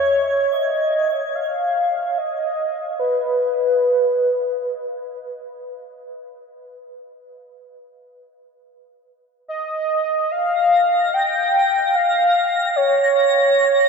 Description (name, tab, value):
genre	ambient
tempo	free time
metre	none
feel	none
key	unclear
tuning	A4 = 440 Hz
part	warm velvety synth lead	melody	0.0-5.0, 9.5-13.9 s	Cb5 to G5	-17 LUFS	equal	chorus, ping-pong delay
part	warm sub bass	bass	0.0-0.5 s	E2	-48 LUFS	equal	tube saturation
part	twinkling granular texture	texture	0.0-0.5, 10.6-13.9 s	G#6 to Bb6	-25 LUFS	equal	built-in reverb, wide subtle chorus
room	wet huge ambient reverb, RT60 8.0 s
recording	dreamy mix soaked in reverb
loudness	-16 LUFS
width	side -5 dB against mid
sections	0.5-13.9 A section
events	none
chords	0.0 E; 0.5 N.C.